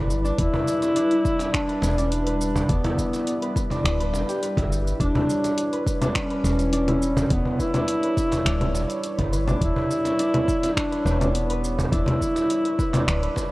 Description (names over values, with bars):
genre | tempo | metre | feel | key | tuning
organic downtempo | 104 BPM | 4/4 | straight | E dorian | A4 = 440 Hz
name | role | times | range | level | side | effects
mellow duduk | melody | 0.0-13.5 s | B3 to E4 | -25 LUFS | equal | digital delay
warm analog pad | sustained chords | 0.0-13.5 s | G3 to D5 | -31 LUFS | equal | chorus, sidechain pumping, shimmer reverb
concert harp | arpeggios | 0.0-13.5 s | D4 to E5 | -29 LUFS | equal | digital delay, shimmer reverb
woody FM bass | bass | 0.0-13.3 s | D1 to G1 | -25 LUFS | equal | sidechain pumping
quartz singing bowl | texture | 0.0-13.5 s | none | barely audible | none | none
deep house drum kit | drums | 0.1-13.5 s | congas, finger snaps, hi-hat, shaker | -29 LUFS | equal | overdrive
electronic kick drum | drums | 0.4-13.5 s | none | -27 LUFS | equal | overdrive
cajon | percussion | 0.5-13.5 s | none | -30 LUFS | right 1 dB | none
room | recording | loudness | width
light reverb, small room ambience | worn, warbling old tape, cassette tape, warbly pitch drift | -20 LUFS | side -19 dB against mid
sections
0.0-13.5 A section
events
none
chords
0.0 Em7